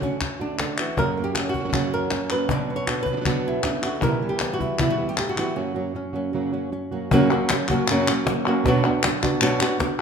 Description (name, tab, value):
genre	flamenco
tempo	156 BPM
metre	4/4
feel	straight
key	F# phrygian dominant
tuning	A4 = 442 Hz
part	flamenco guitar	melody	0.0-10.0 s	F#2 to D5	-24 LUFS	equal	none
part	flamenco guitar	stabs	0.0-10.0 s	E2 to F#4	-27 LUFS	right 4 dB	none
part	cajon	percussion	0.0-10.0 s	none	-27 LUFS	left 3 dB	none
part	palmas hand claps	percussion	0.2-10.0 s	none	-28 LUFS	left 4 dB	none
room	moderate large studio reverb, RT60 1.2 s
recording	minimal, uncompressed stereo recording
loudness	-20 LUFS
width	side -6 dB against mid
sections	0.0-7.1 A section; 7.1-10.0 B section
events	break 5.6-7.1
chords	0.0 D; 1.0 F#; 2.5 Bm; 4.0 Em; 5.6 F#; 8.6 Bm